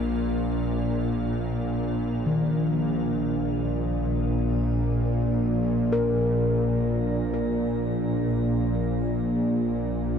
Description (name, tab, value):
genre	dark ambient drone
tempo	free time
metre	none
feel	none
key	unclear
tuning	A4 = 441 Hz
part	gamelan-type bossed gongs	arpeggios	0.0-10.2 s	Bb2 to Bb4	-31 LUFS	left 2 dB	ping-pong delay, shimmer reverb
part	bowed-like drone	drone	0.0-10.2 s	Bb1 to Bb2	-24 LUFS	equal	built-in reverb
part	icy glass pad	texture	0.0-3.1 s	F5	-48 LUFS	equal	chorus, built-in reverb, shimmer reverb
room	wet huge ambient reverb, RT60 7.5 s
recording	dark, warm production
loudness	-23 LUFS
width	side -7 dB against mid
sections	0.0-3.0 A section; 3.0-10.2 B section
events	none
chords	0.0 Bb5